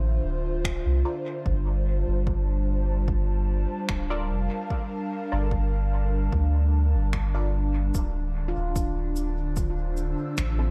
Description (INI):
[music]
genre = ambient dub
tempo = 74 BPM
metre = 4/4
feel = straight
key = unclear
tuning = A4 = 440 Hz
[part]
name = airy breathy pad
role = sustained chords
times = 0.0-10.7 s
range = D3 to E6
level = -34 LUFS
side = equal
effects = chorus
[part]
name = soft dub sub bass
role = bass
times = 0.0-10.7 s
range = D1 to D2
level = -27 LUFS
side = equal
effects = none
[part]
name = electronic kick drum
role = drums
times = 0.6-10.5 s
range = none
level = -32 LUFS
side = equal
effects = none
[part]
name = finger snaps and cabasa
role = drums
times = 0.7-10.6 s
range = none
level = -39 LUFS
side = equal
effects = dub echo
[part]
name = filtered dub chord stab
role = stabs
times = 1.1-10.7 s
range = C4 to D5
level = -40 LUFS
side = equal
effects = phaser, analog chorus, dub echo
[part]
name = handpan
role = arpeggios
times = 8.5-10.7 s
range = F4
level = -39 LUFS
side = equal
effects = vintage 12-bit sampler grit, analog delay
[sound]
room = small room ambience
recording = echo-heavy mix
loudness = -26 LUFS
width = mono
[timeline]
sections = 0.0-10.7 A section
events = none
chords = 0.0 Dm7; 1.5 Gm7; 7.9 Dm7